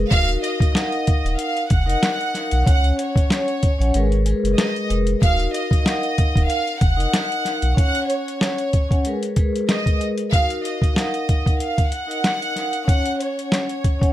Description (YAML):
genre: hip hop, boom-bap hip-hop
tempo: 94 BPM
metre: 4/4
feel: swing 54% on 16ths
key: Eb minor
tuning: A4 = 440 Hz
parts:
  - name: vibraphone with soft mallets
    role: accompaniment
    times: 0.0-14.1 s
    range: Ab3 to Ab5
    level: -24 LUFS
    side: left 1 dB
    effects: cassette tape
  - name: warm sub bass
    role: bass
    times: 0.0-7.7 s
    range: Eb1 to Db2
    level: -20 LUFS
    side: equal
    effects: none
  - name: warm studio violin section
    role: melody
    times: 0.1-14.1 s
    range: Db5 to Gb5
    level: -24 LUFS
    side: right 1 dB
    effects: ping-pong delay
  - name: boom bap sampler-style drum kit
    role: drums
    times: 0.1-14.1 s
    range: hi-hat, kick drum, snare drum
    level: -19 LUFS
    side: equal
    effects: none
room: light reverb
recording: none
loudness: -18 LUFS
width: side -13 dB against mid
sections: 0.0-7.8 A section; 7.8-14.1 B section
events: none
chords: 0.1 Ebmadd9; 2.7 Dbsus4; 3.9 Abmadd9; 5.2 Ebmadd9; 7.8 Dbsus4; 9.0 Abmadd9; 10.3 Ebmadd9; 12.9 Dbsus4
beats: | 0.11 0.75 1.39 2.03 | 2.67 3.30 3.94 4.58 | 5.22 5.86 6.50 7.13 | 7.77 8.41 9.05 9.69 | 10.32 10.96 11.60 12.24 | 12.88 13.52